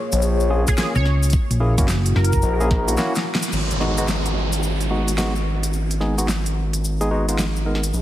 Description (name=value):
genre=glitch hop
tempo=109 BPM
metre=4/4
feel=swing 63% on 16ths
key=G# minor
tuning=A4 = 440 Hz
part: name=dark analog pad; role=sustained chords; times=0.0-8.0 s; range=G#3 to C#5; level=-28 LUFS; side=left 3 dB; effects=chorus, phaser, sidechain pumping
part: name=gritty driven synth bass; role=bass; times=0.1-8.0 s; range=G#1 to A#1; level=-22 LUFS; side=equal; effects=none
part: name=pop drum kit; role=drums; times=0.1-7.9 s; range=crash cymbal, hi-hat, snare drum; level=-26 LUFS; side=equal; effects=none
part: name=cabasa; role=percussion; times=0.1-8.0 s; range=none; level=-33 LUFS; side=left 4 dB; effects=none
part: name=barky tine electric piano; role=stabs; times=0.5-7.8 s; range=G#3 to A#4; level=-26 LUFS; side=equal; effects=sidechain pumping, low-pass filter, digital delay
part: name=sync lead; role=melody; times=0.7-2.9 s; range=G#4 to C#5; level=-27 LUFS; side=equal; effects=analog chorus, digital delay
part: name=electronic kick drum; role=drums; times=0.7-2.8 s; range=none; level=-19 LUFS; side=equal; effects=none
part: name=hollow-body short-scale fingered electric bass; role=bass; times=1.0-2.4 s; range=F#1 to C#2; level=-18 LUFS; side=equal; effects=tube saturation
part: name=downlifter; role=sound effects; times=3.5-7.9 s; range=none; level=-29 LUFS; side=right 1 dB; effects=none
room=light reverb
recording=heavily compressed radio sound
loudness=-18 LUFS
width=side -13 dB against mid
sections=0.0-3.5 A section; 3.5-8.0 B section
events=break 3.0-3.5; drum fill 3.0-3.5; band accent 3.3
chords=0.0 A#m7; 1.3 F#7; 3.5 G#m7